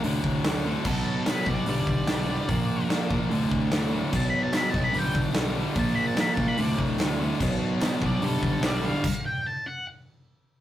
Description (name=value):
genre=classic rock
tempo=147 BPM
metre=4/4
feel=straight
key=unclear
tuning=A4 = 440 Hz
part: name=crunchy overdriven guitar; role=riff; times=0.0-9.0 s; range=D2 to B3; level=-29 LUFS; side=right 3 dB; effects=none
part: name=tight distorted guitar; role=riff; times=0.0-9.0 s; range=D2 to B3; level=-31 LUFS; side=left 4 dB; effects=distortion
part: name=fingered electric bass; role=bass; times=0.0-8.9 s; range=A1 to Bb2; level=-31 LUFS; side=equal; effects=none
part: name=big rock drum kit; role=drums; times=0.0-9.1 s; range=crash cymbal, hi-hat, kick drum, snare drum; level=-28 LUFS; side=left 1 dB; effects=none
part: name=octave-fuzz lead guitar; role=melody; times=0.9-9.9 s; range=A4 to B5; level=-30 LUFS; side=left 1 dB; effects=distortion
part: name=group handclap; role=percussion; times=4.5-8.7 s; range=none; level=-42 LUFS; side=equal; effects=none
room=wet studio reverb, RT60 0.6 s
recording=rough rehearsal-room recording, warm saturation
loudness=-23 LUFS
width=side -12 dB against mid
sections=0.0-10.6 A section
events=lead electric guitar solo 0.0-10.6; stop 9.0-10.6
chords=0.0 D5; 0.9 B5; 1.7 G/B; 2.5 Bb; 3.3 D5; 4.1 B5; 5.0 G/B; 5.8 Bb5; 6.6 D5; 7.4 B5; 8.2 G/B; 9.0 N.C.